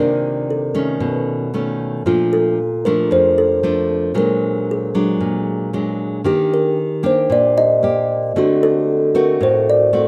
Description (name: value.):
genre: bossa nova.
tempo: 114 BPM.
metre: 4/4.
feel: straight.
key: unclear.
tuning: A4 = 441 Hz.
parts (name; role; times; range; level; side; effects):
kalimba; melody; 0.0-10.1 s; F4 to Eb5; -19 LUFS; equal; none.
nylon-string guitar; accompaniment; 0.0-10.1 s; F2 to G4; -22 LUFS; equal; none.
room: moderate small room reverb, RT60 0.6 s.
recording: rough home demo mix.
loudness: -17 LUFS.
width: mono.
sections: 0.0-10.1 A section.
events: none.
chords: 0.0 Cm9; 1.0 B9; 2.1 Bbmaj7; 4.2 Bbaug7; 6.2 Ebmaj7; 8.3 D7.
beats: 0.48 1.00 1.53 | 2.05 2.58 3.10 3.63 | 4.15 4.68 5.20 5.73 | 6.25 6.78 7.30 7.82 | 8.35 8.87 9.40 9.92.